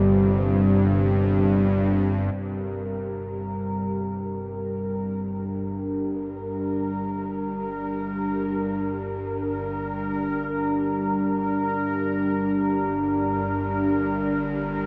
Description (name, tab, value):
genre	dark ambient drone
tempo	free time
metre	none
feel	none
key	G minor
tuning	A4 = 436 Hz
part	deep dark ambient pad	sustained chords	0.0-14.9 s	G3 to C5	-27 LUFS	equal	chorus, built-in reverb
part	bowed-like drone	drone	0.0-14.9 s	G1 to G2	-31 LUFS	equal	built-in reverb
part	bubbling stepped-filter texture	texture	2.5-14.9 s	Bb4	-33 LUFS	equal	chorus, built-in reverb
room	wet huge ambient reverb, RT60 8.4 s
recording	dark, warm production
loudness	-25 LUFS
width	mono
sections	0.0-2.3 A section; 2.3-14.9 B section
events	fade-in on synth drone 2.3-14.9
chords	0.0 C5/G; 2.3 Gm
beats	free time